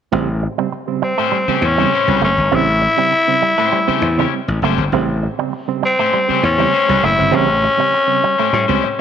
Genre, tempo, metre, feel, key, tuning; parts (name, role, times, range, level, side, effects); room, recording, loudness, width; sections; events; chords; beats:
funk; 100 BPM; 4/4; straight; A mixolydian; A4 = 437 Hz
electric guitar with an envelope filter; riff; 0.1-8.9 s; G3 to A3; -24 LUFS; right 10 dB
barky reed electric piano; stabs; 0.1-9.0 s; A2 to B#3; -22 LUFS; right 9 dB; overdrive, fast tremolo, slapback echo
gritty slap bass; bass; 0.1-8.8 s; F#1 to A2; -18 LUFS; left 1 dB; overdrive
raspy tenor saxophone; melody; 1.0-9.0 s; B#3 to E4; -15 LUFS; left 2 dB
electric guitar at the edge of break-up; accompaniment; 1.2-8.9 s; A3 to C#5; -22 LUFS; left 13 dB; spring reverb
moderate plate reverb, RT60 3.0 s; 1960s-style stereo with parts hard left and right; -13 LUFS; side -8 dB against mid
0.1-9.0 A section
0.1 A7#9
| 0.12 0.72 1.32 1.93 | 2.53 3.13 3.73 4.33 | 4.93 5.53 6.13 6.73 | 7.33 7.93 8.53